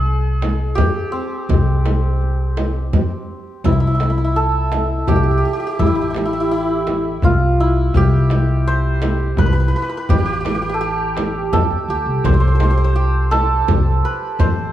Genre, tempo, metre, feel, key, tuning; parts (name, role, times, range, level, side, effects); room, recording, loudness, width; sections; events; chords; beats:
Persian modal ensemble; 84 BPM; 3/4; straight; C dastgah mahur from 3.6 s; A4 = 440 Hz
santur; melody; 0.0-14.7 s; C4 to C5; -20 LUFS; right 1 dB
upright bass; bass; 0.0-14.7 s; A1 to F2; -18 LUFS; equal
tombak; percussion; 0.1-14.6 s; -21 LUFS; left 4 dB
frame drum; percussion; 0.4-14.6 s; -22 LUFS; right 5 dB
light reverb; -15 LUFS; side -12 dB against mid
0.0-3.6 A section; 3.6-14.7 B section
0.05 0.77 | 1.49 2.21 2.92 | 3.64 4.36 5.08 | 5.79 6.51 7.23 | 7.94 8.66 9.38 | 10.09 10.81 11.53 | 12.24 12.96 13.68 | 14.39